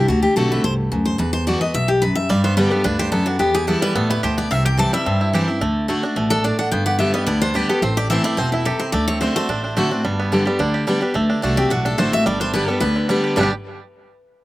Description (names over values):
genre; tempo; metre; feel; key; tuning
bluegrass; 217 BPM; 4/4; straight; G major; A4 = 441 Hz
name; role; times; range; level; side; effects
picked steel-string acoustic guitar; melody; 0.0-13.5 s; E4 to A5; -22 LUFS; left 2 dB; slapback echo
picked steel-string acoustic guitar; accompaniment; 0.0-13.5 s; E2 to G4; -21 LUFS; equal; none
upright bass; bass; 0.0-13.5 s; E1 to G2; -22 LUFS; equal; none
bluegrass banjo; melody; 2.3-13.5 s; D3 to G4; -24 LUFS; right 3 dB; none
room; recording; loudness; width
little or no reverb; recorded outdoors, with no room sound; -16 LUFS; side -17 dB against mid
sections
0.0-11.2 A section; 11.2-13.4 B section; 13.4-14.4 C section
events
none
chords
0.1 D7; 1.2 Emadd9; 2.3 G; 3.4 Em; 4.5 C; 5.6 D; 6.7 G; 7.8 Am; 8.9 D7; 10.0 G; 11.2 D7; 12.3 G